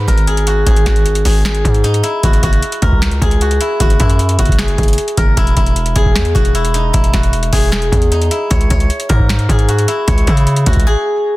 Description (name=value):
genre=hip hop, trap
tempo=153 BPM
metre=4/4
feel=half-time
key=unclear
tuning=A4 = 440 Hz
part: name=steel-string zither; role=melody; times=0.0-11.4 s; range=D#4 to C#5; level=-17 LUFS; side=left 1 dB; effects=tape echo
part: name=distorted 808-style bass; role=bass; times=0.0-10.9 s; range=E1 to C#3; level=-15 LUFS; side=equal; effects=distortion
part: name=booming analog drum machine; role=drums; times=0.1-11.0 s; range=finger snaps, hi-hat, kick drum, snare drum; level=-14 LUFS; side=equal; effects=soft clipping on snare
room=little or no reverb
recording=dense, heavily limited modern master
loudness=-11 LUFS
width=side -18 dB against mid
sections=0.0-11.4 A section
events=break 10.9-11.4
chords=0.0 G#7sus2; 2.2 F#sus2; 5.4 E; 8.5 C#5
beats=0.27 | 0.67 1.06 1.45 1.84 | 2.23 2.63 3.02 3.41 | 3.80 4.20 4.59 4.98 | 5.37 5.76 6.16 6.55 | 6.94 7.33 7.72 8.12 | 8.51 8.90 9.29 9.69 | 10.08 10.47 10.86 11.25